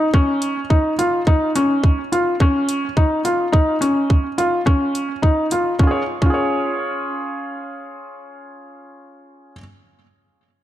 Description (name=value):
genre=piano and strings electronica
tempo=106 BPM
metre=4/4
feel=straight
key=Db major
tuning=A4 = 441 Hz
part: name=felt-muted upright piano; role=riff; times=0.0-9.6 s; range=Db4 to Db5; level=-19 LUFS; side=equal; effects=tape echo
part: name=electronic kick drum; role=drums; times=0.1-6.4 s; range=none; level=-15 LUFS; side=equal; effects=none
part: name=electronic hi-hat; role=drums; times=0.4-5.6 s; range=none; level=-28 LUFS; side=right 1 dB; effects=overdrive
room=light reverb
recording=dark, warm production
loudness=-16 LUFS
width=side -13 dB against mid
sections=0.0-5.8 A section; 5.8-8.1 B section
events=none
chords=0.0 Dbadd9; 5.8 Db